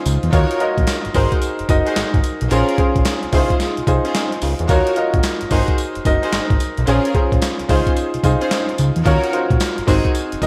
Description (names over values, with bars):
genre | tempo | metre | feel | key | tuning
R&B, new jack swing | 110 BPM | 4/4 | swing 64% on 16ths | Db major | A4 = 440 Hz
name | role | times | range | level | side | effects
warm baby grand piano | accompaniment | 0.0-10.5 s | Db4 to Eb5 | -22 LUFS | equal | slapback echo
fat analog bass | bass | 0.1-10.5 s | Gb1 to Fb2 | -22 LUFS | equal | none
boom bap sampler-style drum kit | drums | 0.1-10.5 s | handclaps, hi-hat, kick drum, snare drum, tambourine | -22 LUFS | equal | none
clear studio string section | stabs | 0.3-10.1 s | C4 to Db5 | -27 LUFS | equal | delay, slapback echo
room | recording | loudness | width
moderate scoring stage reverb, RT60 1.9 s | big arena sound | -17 LUFS | mono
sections
0.0-10.5 A section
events
none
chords
0.3 Ebm7; 1.1 Ab7; 2.5 Bbm7; 3.3 Dbmaj7; 4.7 Ebm7; 5.5 Ab7; 6.9 Bbm7; 7.7 Dbmaj7; 9.1 Ebm7; 9.9 Ab7